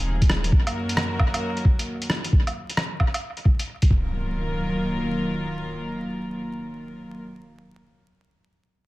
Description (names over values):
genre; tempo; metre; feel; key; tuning
future garage; 133 BPM; 4/4; swing 65% on 16ths; Eb dorian; A4 = 441 Hz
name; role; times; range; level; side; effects
warm studio string section; sustained chords; 0.0-7.2 s; Gb2 to Bb4; -28 LUFS; equal; sidechain pumping
warm sub bass; bass; 0.0-0.5 s; Eb1; -26 LUFS; equal; sidechain pumping
downlifter and impact; sound effects; 0.0-0.5, 3.9-7.3 s; none; -33 LUFS; equal; none
electronic kick drum; drums; 0.2-4.0 s; none; -19 LUFS; equal; none
lo-fi sampler-style drum kit; drums; 0.2-3.9 s; hi-hat, rim click, woodblock; -27 LUFS; equal; tape echo
room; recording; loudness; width
light reverb; echo-heavy mix, vinyl crackle; -22 LUFS; side -19 dB against mid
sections
0.0-4.1 A section; 4.1-7.7 B section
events
none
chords
0.0 Fm; 0.5 Ebm/Gb; 3.9 Ebmadd9